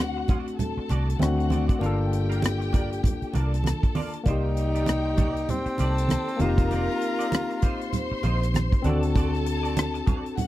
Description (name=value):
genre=lush 1970s-style soul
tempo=98 BPM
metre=4/4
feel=swing 58% on 16ths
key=C dorian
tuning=A4 = 441 Hz
part: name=warm studio string section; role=second line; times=0.0-10.5 s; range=F#4 to C6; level=-34 LUFS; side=left 1 dB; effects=none
part: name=barky tine electric piano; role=accompaniment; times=0.0-10.5 s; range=A3 to D5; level=-30 LUFS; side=left 4 dB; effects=overdrive
part: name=semi-hollow electric guitar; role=riff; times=0.0-10.3 s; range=A3 to F5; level=-39 LUFS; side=right 6 dB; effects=ensemble chorus
part: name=vintage muted fingered electric bass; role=bass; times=0.0-10.0 s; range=F1 to D2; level=-26 LUFS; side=equal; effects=none
part: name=tight funk drum kit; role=drums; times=0.0-10.5 s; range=hi-hat, kick drum, rim click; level=-25 LUFS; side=equal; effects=none
part: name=congas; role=percussion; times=0.3-10.5 s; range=none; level=-30 LUFS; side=right 3 dB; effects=none
part: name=breathy tenor saxophone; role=melody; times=4.3-8.2 s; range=C4 to F4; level=-29 LUFS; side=equal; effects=none
room=small room ambience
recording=dry, close 1970s-style studio recording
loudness=-22 LUFS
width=side -15 dB against mid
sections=0.0-10.5 A section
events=none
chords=0.0 D7; 1.8 Gm7; 4.3 Cm7; 6.4 F7sus4; 8.8 D7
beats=0.59 1.20 | 1.82 2.43 3.04 3.65 | 4.26 4.88 5.49 6.10 | 6.71 7.32 7.93 8.54 | 9.15 9.77 10.38